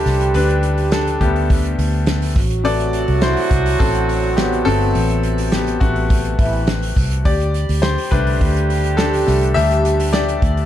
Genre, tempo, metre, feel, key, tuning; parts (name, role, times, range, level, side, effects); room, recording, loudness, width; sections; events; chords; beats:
piano-driven pop; 104 BPM; 4/4; straight; D mixolydian; A4 = 439 Hz
warm French horn section; second line; 0.0-10.7 s; E3 to G4; -22 LUFS; right 4 dB
bright upright piano; accompaniment; 0.0-10.7 s; C3 to E5; -20 LUFS; left 4 dB
vintage muted fingered electric bass; bass; 0.0-10.7 s; G1 to D2; -19 LUFS; equal
loose indie drum kit; drums; 0.1-10.7 s; hi-hat, kick drum, snare drum; -20 LUFS; equal
light reverb, small room ambience; dark, warm production; -14 LUFS; side -11 dB against mid
0.0-10.7 A section
upright piano solo 0.0-10.7
0.0 Dsus4; 2.4 Amadd9; 7.3 Dsus4
| 0.35 0.92 1.50 2.07 | 2.65 3.23 3.80 4.38 | 4.95 5.53 6.11 6.68 | 7.26 7.83 8.41 8.98 | 9.56 10.14